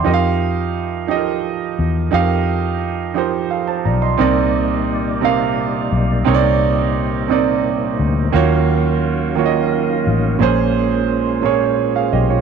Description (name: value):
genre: R&B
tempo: 58 BPM (dotted quarters)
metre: 6/8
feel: straight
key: C phrygian from 4.2 s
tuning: A4 = 440 Hz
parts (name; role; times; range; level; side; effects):
- warm grand piano; accompaniment; 0.0-12.4 s; Bb2 to C6; -17 LUFS; right 9 dB; none
- vintage muted fingered electric bass; bass; 0.0-12.4 s; A1 to F2; -20 LUFS; left 2 dB; none
- tonewheel organ; sustained chords; 4.2-12.4 s; Bb2 to F5; -23 LUFS; left 2 dB; overdrive, chorus vibrato, slow rotary speaker
room: moderate spring reverb, RT60 1.2 s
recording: none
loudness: -15 LUFS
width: side -6 dB against mid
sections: 0.0-4.2 A section; 4.2-12.4 B section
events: none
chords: 0.1 F9sus4; 4.2 Cm9; 8.3 Ebm9; 10.4 Bbm9